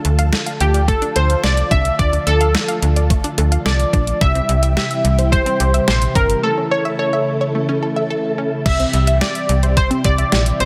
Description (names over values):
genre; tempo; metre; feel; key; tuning
synth-pop; 108 BPM; 4/4; straight; D minor; A4 = 440 Hz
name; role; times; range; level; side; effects
ensemble organ-string; sustained chords; 0.0-10.7 s; C3 to A4; -26 LUFS; equal; ensemble chorus
unison pluck; arpeggios; 0.0-10.7 s; G3 to F5; -28 LUFS; equal; tape echo
slap-like FM bass; bass; 0.0-10.7 s; G1 to D2; -19 LUFS; equal; none
detuned 8-bit digital drum machine; drums; 0.0-10.7 s; crash cymbal, hi-hat, kick drum, snare drum; -22 LUFS; equal; overdrive
funky polysynth comp; melody; 0.6-10.7 s; G4 to E5; -21 LUFS; equal; chorus, tape echo
room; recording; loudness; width
light reverb, digital ambience; dense, heavily limited modern master; -17 LUFS; mono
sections
0.0-8.7 A section; 8.7-10.7 B section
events
none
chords
0.0 Dm; 4.2 C; 6.4 A; 8.7 C